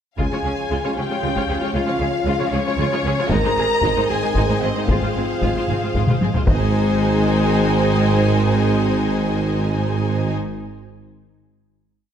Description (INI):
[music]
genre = cinematic, epic orchestral film score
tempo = 77 BPM (dotted quarters)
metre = 6/8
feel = straight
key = Ab major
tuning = A4 = 440 Hz
[part]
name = warm symphonic violin section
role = melody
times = 0.2-10.3 s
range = Eb4 to Db5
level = -29 LUFS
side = left 3 dB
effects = none
[part]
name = rich studio violin section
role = second line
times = 0.2-10.3 s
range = Db5 to Bb5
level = -26 LUFS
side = left 2 dB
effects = none
[part]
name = rich symphonic viola section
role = accompaniment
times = 0.2-10.3 s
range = Ab3 to F4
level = -27 LUFS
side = left 2 dB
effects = none
[part]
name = clear symphonic string section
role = sustained chords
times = 0.2-10.3 s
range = Ab3 to F5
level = -28 LUFS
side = left 2 dB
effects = none
[part]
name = clear trombone section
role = sustained chords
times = 0.2-10.3 s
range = Eb3 to Db4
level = -29 LUFS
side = right 3 dB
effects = none
[part]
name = mellow French horn section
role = sustained chords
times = 0.2-10.3 s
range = Db4 to Bb4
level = -27 LUFS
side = left 2 dB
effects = none
[part]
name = dark tuba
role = bass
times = 0.2-10.3 s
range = Ab1 to Db2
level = -24 LUFS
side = right 1 dB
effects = none
[part]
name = rich symphonic cello section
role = bass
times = 0.2-10.3 s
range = Ab2 to Db3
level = -25 LUFS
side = right 2 dB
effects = none
[part]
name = rich symphonic double bass section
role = bass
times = 0.2-10.3 s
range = Ab1 to Db2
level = -26 LUFS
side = right 2 dB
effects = none
[part]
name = taiko ensemble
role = drums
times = 0.2-7.5 s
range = none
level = -21 LUFS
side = left 1 dB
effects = none
[sound]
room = moderate scoring stage reverb, RT60 1.6 s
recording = none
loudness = -17 LUFS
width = side -8 dB against mid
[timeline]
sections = 0.2-6.5 theme; 6.5-9.6 final chord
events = drum fill 6.1-6.5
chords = 0.2 Db; 3.3 Ab; 4.9 Fm/Ab; 6.5 Ab